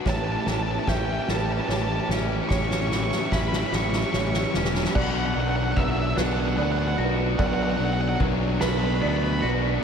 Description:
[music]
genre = post-rock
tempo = 49 BPM (dotted quarters)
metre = 6/8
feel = straight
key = B minor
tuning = A4 = 440 Hz
[part]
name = felt-muted upright piano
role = arpeggios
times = 0.0-9.8 s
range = B4 to E5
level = -35 LUFS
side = right 3 dB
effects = diffuse ambient delay
[part]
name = twangy electric guitar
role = arpeggios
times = 0.0-9.8 s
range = A2 to F#4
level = -34 LUFS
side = left 1 dB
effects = lush chorus, diffuse ambient delay
[part]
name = sludgy distorted guitar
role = riff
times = 0.0-9.8 s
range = B2 to G4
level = -30 LUFS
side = left 9 dB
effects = overdrive
[part]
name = octave-fuzz lead guitar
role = melody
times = 0.1-9.5 s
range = E5 to C#6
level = -30 LUFS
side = right 1 dB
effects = distortion, diffuse ambient delay
[part]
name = fuzz guitar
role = riff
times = 0.1-9.8 s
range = A2 to F#4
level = -31 LUFS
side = right 9 dB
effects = distortion
[part]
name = growling fingered electric bass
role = bass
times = 0.1-9.8 s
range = E1 to D2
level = -28 LUFS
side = equal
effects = overdrive
[part]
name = soft-mallet drum kit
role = drums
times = 0.1-9.6 s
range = crash cymbal, kick drum, ride cymbal, snare drum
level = -28 LUFS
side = right 1 dB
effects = none
[sound]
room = moderate lush hall reverb, RT60 2.6 s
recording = dreamy mix soaked in reverb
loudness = -22 LUFS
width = side -7 dB against mid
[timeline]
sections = 0.0-5.0 A section; 5.0-9.8 B section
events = build-up 0.0-5.0; drum fill 0.0-5.0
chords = 0.1 A7; 5.0 Bm

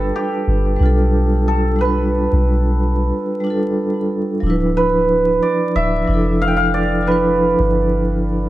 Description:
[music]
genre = trip hop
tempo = 91 BPM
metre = 4/4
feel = swing 58% on 16ths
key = D dorian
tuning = A4 = 440 Hz
[part]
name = cimbalom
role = melody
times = 0.0-8.5 s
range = G4 to G5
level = -20 LUFS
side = right 1 dB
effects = vintage 12-bit sampler grit, tape echo
[part]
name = vibraphone with soft mallets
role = accompaniment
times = 0.0-8.5 s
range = F3 to B4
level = -19 LUFS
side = right 1 dB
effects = tremolo, tape echo
[part]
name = soft 808-style bass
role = bass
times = 0.0-8.5 s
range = D1 to B1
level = -18 LUFS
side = equal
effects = none
[sound]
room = light reverb, small room ambience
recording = vinyl crackle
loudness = -14 LUFS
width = side -15 dB against mid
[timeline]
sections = 0.0-4.4 A section; 4.4-8.5 B section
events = break 3.1-4.4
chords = 0.0 G7; 4.4 Dm69

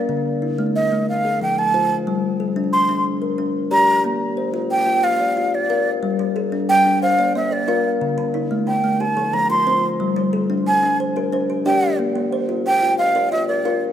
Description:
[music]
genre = southern african traditional, mbira-style interlocking cycle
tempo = 121 BPM (dotted quarters)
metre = 12/8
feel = straight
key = G equiheptatonic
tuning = A4 = 435 Hz
[part]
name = kalimba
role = arpeggios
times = 0.0-13.9 s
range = D3 to F5+29c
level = -21 LUFS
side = left 2 dB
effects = slapback echo
[part]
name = breathy mellow silver concert flute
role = melody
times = 0.8-13.8 s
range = D5 to C6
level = -19 LUFS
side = right 1 dB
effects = slapback echo
[part]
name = kalimba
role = arpeggios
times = 6.2-13.9 s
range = D3 to E5-43c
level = -27 LUFS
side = right 4 dB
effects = none
[sound]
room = moderate lush hall reverb, RT60 2.5 s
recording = rough home demo mix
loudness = -17 LUFS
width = side -10 dB against mid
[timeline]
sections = 0.0-13.9 A section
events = none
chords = 0.1 Dm; 1.1 F; 2.1 Gm; 4.0 Bb; 6.0 G5; 7.0 Bb; 8.0 Dm; 9.0 F; 10.0 Gm; 12.0 Bb

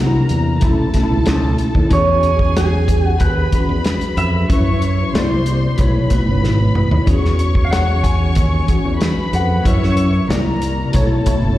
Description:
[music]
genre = lush 1970s-style soul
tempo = 93 BPM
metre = 4/4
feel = straight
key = E major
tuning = A4 = 442 Hz
[part]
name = electric guitar through a small old amp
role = melody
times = 0.0-10.6 s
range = F#4 to G#5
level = -22 LUFS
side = right 1 dB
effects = phaser, slapback echo
[part]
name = warm studio string section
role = second line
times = 0.0-11.6 s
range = G#4 to C#6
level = -25 LUFS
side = left 2 dB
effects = slapback echo
[part]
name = tine electric piano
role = accompaniment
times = 0.0-11.6 s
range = B2 to D5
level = -19 LUFS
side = left 1 dB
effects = ensemble chorus, slapback echo
[part]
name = fingered electric bass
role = bass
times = 0.0-11.6 s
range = F#1 to F#2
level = -17 LUFS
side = equal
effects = none
[part]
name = warm soul drum kit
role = drums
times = 0.3-11.4 s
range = hi-hat, kick drum, snare drum, toms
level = -18 LUFS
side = equal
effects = none
[sound]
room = studio reverb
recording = live gig heard through the venue's PA, recital hall reverb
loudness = -13 LUFS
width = side -15 dB against mid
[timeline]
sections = 0.0-11.6 A section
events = drum fill 6.4-7.1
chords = 0.0 C9; 0.6 B9sus4; 1.9 E69; 4.5 F#7sus4; 5.1 C9; 5.8 B9sus4; 7.1 E69; 9.7 F#7sus4; 10.3 C9; 10.9 B9sus4

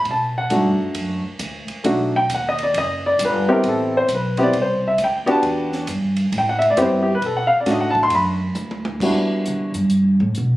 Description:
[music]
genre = jazz piano trio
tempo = 134 BPM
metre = 4/4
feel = swing 65% on 8ths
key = E minor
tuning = A4 = 437 Hz
[part]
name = dark baby grand piano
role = melody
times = 0.0-9.7 s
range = G3 to C6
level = -18 LUFS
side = equal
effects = plate reverb
[part]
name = upright bass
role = bass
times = 0.0-10.6 s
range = F#1 to D3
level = -23 LUFS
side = right 1 dB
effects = none
[part]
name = compact cocktail drum kit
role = drums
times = 0.1-10.5 s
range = crash cymbal, hi-hat, kick drum, ride cymbal, snare drum, toms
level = -31 LUFS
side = right 2 dB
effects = none
[sound]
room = moderate large studio reverb, RT60 0.8 s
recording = recorded on a phone in the room, club ambience, compression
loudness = -17 LUFS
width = side -16 dB against mid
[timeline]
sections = 0.0-9.0 A section; 9.0-10.6 A section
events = grand piano solo 0.0-9.0; drum fill 8.6-9.0; upright bass solo 9.0-10.6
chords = 0.1 B7#9; 3.6 Am7; 5.4 Em7; 6.3 Am7; 7.2 B7#9; 9.0 Em7

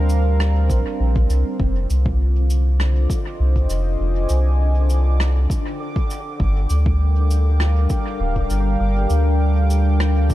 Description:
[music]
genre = ambient dub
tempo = 100 BPM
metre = 4/4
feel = swing 54% on 16ths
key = F dorian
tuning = A4 = 440 Hz
[part]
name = warm analog pad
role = sustained chords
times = 0.0-10.3 s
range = G3 to Ab5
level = -26 LUFS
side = equal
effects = chorus
[part]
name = soft dub sub bass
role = bass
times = 0.0-10.3 s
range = D1 to D2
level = -16 LUFS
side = equal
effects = tube saturation
[part]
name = bubbling stepped-filter texture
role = texture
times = 0.0-10.3 s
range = D3 to D6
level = -31 LUFS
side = equal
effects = chorus, built-in reverb
[part]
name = cabasa and rim click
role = drums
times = 0.1-10.3 s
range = none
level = -30 LUFS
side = right 1 dB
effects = dub echo
[part]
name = electronic kick drum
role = drums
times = 0.7-10.3 s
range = none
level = -22 LUFS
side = equal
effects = none
[sound]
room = little or no reverb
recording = none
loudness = -16 LUFS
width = side -15 dB against mid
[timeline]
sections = 0.0-10.3 A section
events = none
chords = 0.0 Gm7; 1.6 Fm7; 6.4 Gm7

